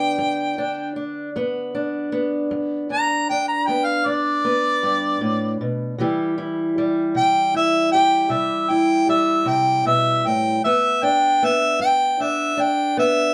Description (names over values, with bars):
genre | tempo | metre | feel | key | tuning
acoustic country blues, solo or duo | 52 BPM (dotted quarters) | 12/8 | straight | G major | A4 = 440 Hz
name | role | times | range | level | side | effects
mellow harmonica | melody | 0.0-13.3 s | D5 to Bb5 | -21 LUFS | equal | none
fingerpicked steel-string acoustic guitar | accompaniment | 0.0-13.3 s | G2 to G4 | -24 LUFS | equal | none
room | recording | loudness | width
moderate studio reverb, RT60 0.6 s | band playing live in one room | -20 LUFS | mono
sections
0.0-13.3 A section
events
harmonica solo 0.0-13.3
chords
0.0 G; 6.0 C; 10.6 G